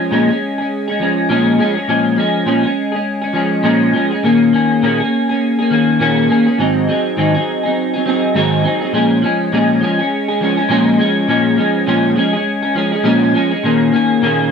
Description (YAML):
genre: indie pop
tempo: 102 BPM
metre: 4/4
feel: swing 60% on 16ths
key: Bb minor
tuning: A4 = 440 Hz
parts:
  - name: clean electric guitar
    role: solo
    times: 0.0-14.5 s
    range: Ab2 to Ab4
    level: -12 LUFS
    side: equal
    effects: analog chorus, warbly pitch drift
room: wet small room reverb, RT60 0.5 s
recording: none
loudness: -12 LUFS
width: side -6 dB against mid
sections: 0.0-8.9 A section; 8.9-14.5 B section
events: none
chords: 0.0 Bbm7; 4.2 Eb7sus4/Bb; 6.6 Ab7; 8.9 Bbm7; 13.7 Eb7sus4/Bb